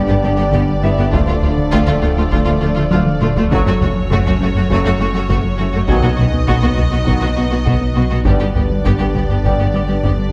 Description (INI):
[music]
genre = cinematic, hybrid orchestral and electronic film score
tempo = 101 BPM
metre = 4/4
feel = straight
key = unclear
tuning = A4 = 439 Hz
[part]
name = warm symphonic violin section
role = melody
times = 0.0-10.3 s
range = C#5 to D#5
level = -28 LUFS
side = equal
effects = none
[part]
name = clear trombone section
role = sustained chords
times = 0.0-9.7 s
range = C#3 to G3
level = -27 LUFS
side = equal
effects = none
[part]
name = dark French horn section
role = sustained chords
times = 0.0-9.7 s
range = A3 to F#4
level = -30 LUFS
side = equal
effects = none
[part]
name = warbly tape-like pad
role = sustained chords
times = 0.0-10.3 s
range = D3 to B4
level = -26 LUFS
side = equal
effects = chorus, built-in reverb
[part]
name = rubbery square bass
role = riff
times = 0.0-10.3 s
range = D2 to B3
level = -24 LUFS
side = equal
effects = none
[part]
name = sub bass with octave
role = bass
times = 0.0-10.3 s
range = D1 to B1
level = -24 LUFS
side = equal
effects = none
[part]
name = clear grand piano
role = texture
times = 0.0-10.3 s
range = D4 to G#6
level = -32 LUFS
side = equal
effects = none
[part]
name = clear symphonic violin section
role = second line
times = 0.1-10.1 s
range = F4 to G4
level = -28 LUFS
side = equal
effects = none
[part]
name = rich symphonic viola section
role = accompaniment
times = 0.1-10.1 s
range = A3 to B3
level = -27 LUFS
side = equal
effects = none
[part]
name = rich symphonic cello section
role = bass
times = 0.1-10.1 s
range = D2 to B2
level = -25 LUFS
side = equal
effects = none
[part]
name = clear symphonic double bass section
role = bass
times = 0.2-10.1 s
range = F#1 to D2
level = -25 LUFS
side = equal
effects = none
[part]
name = taiko ensemble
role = drums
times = 0.5-10.3 s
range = none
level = -23 LUFS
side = equal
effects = none
[sound]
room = moderate scoring stage reverb, RT60 1.6 s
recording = dark, warm production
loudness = -15 LUFS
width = mono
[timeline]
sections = 0.0-10.3 A section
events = drum fill 2.9-3.5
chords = 0.0 G; 1.1 Dm; 3.5 F#m; 5.9 B; 8.3 G